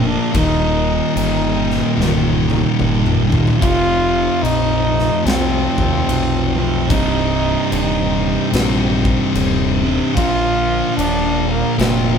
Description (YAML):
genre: stoner and doom metal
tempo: 73 BPM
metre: 4/4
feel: swing 63% on 8ths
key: C dorian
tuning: A4 = 440 Hz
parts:
  - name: bright trombone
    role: melody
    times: 0.0-12.2 s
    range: Bb3 to F4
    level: -20 LUFS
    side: right 1 dB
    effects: none
  - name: string machine, cellos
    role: sustained chords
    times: 0.0-12.2 s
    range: D4 to A5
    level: -30 LUFS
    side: left 1 dB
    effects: phaser, ensemble chorus
  - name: thick fuzz guitar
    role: riff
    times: 0.0-12.2 s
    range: C2 to Bb3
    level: -20 LUFS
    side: left 8 dB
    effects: distortion
  - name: thick fuzz guitar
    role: riff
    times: 0.0-12.2 s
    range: C2 to Bb3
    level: -19 LUFS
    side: right 8 dB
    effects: distortion
  - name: growling picked electric bass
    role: bass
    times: 0.0-12.2 s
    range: C1 to Eb2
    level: -22 LUFS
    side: left 1 dB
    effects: overdrive
  - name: big rock drum kit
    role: drums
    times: 0.3-12.0 s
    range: crash cymbal, kick drum, snare drum, toms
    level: -24 LUFS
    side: left 1 dB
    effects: none
room: light reverb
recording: band playing live in one room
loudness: -14 LUFS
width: side -7 dB against mid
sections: 0.0-12.2 A section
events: drum fill 2.0-3.6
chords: 0.3 Eb; 3.6 F; 6.9 Cm; 10.2 Bb